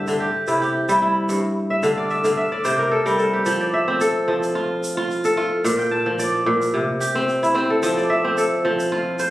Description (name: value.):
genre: west african traditional, West African string and xylophone music.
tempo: 110 BPM.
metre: 4/4.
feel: straight.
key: F major.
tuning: A4 = 440 Hz.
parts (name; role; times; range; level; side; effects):
kora; arpeggios; 0.0-9.3 s; G2 to A5; -18 LUFS; equal; none.
egg shaker; percussion; 0.1-9.3 s; none; -35 LUFS; right 2 dB; none.
room: moderate recital hall reverb, RT60 1.6 s.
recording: recorded on a phone in the room, club reverb, compression.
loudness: -18 LUFS.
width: side -16 dB against mid.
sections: 0.0-3.5 A section; 3.5-9.3 B section.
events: kora fill 1.7-3.5.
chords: 0.2 C; 1.3 G5; 2.4 C5; 3.5 F; 5.7 Bb; 6.7 C; 7.8 F.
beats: 0.20 0.75 | 1.29 1.84 2.38 2.93 | 3.47 4.02 4.56 5.11 | 5.65 6.20 6.74 7.29 | 7.83 8.38 8.92.